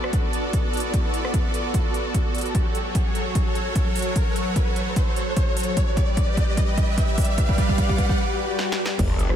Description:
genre	heavy wobble dubstep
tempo	149 BPM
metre	4/4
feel	swing 55% on 16ths, half-time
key	unclear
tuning	A4 = 439 Hz
part	supersaw pad	sustained chords	0.0-9.4 s	F#3 to D5	-26 LUFS	right 1 dB	wide subtle chorus, sidechain pumping
part	big-room dance drum kit	drums	0.0-9.4 s	crash cymbal, hi-hat, rim click, snare drum	-32 LUFS	right 1 dB	overdrive, high-pass filter on hats, high-pass filter on snare, high-pass filter on cymbals, high-pass filter on room
part	riser, swell and sub drop	sound effects	0.0-9.4 s	none	-31 LUFS	equal	none
part	electronic kick drum	drums	0.1-9.1 s	none	-22 LUFS	equal	overdrive
part	growl bass	bass	9.0-9.4 s	F#1	-22 LUFS	equal	chorus, overdrive
room	light reverb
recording	none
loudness	-20 LUFS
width	side -9 dB against mid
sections	0.0-9.0 A section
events	build-up 0.0-9.0; riser 0.0-8.2; drum fill 2.5-8.2, 8.6-9.0; break 8.2-9.0; swell 8.2-9.0; impact 9.0-9.4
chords	0.0 Bm7; 2.5 F#m; 5.8 G

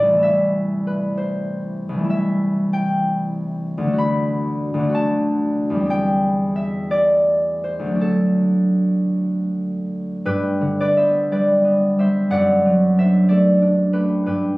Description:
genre	classical, solo harp piece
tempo	52-66 BPM (dotted quarters)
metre	6/8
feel	rubato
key	unclear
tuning	A4 = 440 Hz
part	concert harp	solo	0.0-14.6 s	C2 to B5	-16 LUFS	equal	none
room	light reverb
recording	recorded on a phone in the room, club reverb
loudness	-17 LUFS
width	side -21 dB against mid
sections	0.0-10.3 A section; 10.3-14.6 B section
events	none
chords	0.2 Am/C; 4.0 D; 5.9 C/E; 8.0 D; 10.3 G; 12.3 D/F#

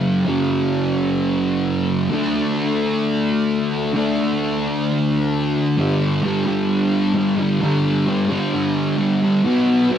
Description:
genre	rock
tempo	131 BPM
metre	4/4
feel	straight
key	G lydian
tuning	A4 = 440 Hz
part	thick fuzz guitar	solo	0.0-10.0 s	F#2 to D4	-17 LUFS	equal	distortion, lush chorus, cassette tape, tape echo
room	moderate booth ambience, RT60 0.2 s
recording	home recording on cassette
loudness	-17 LUFS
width	side -9 dB against mid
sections	0.0-5.8 A section; 5.8-10.0 B section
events	none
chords	0.0 F#5; 2.1 D5; 5.8 G5; 9.4 B5

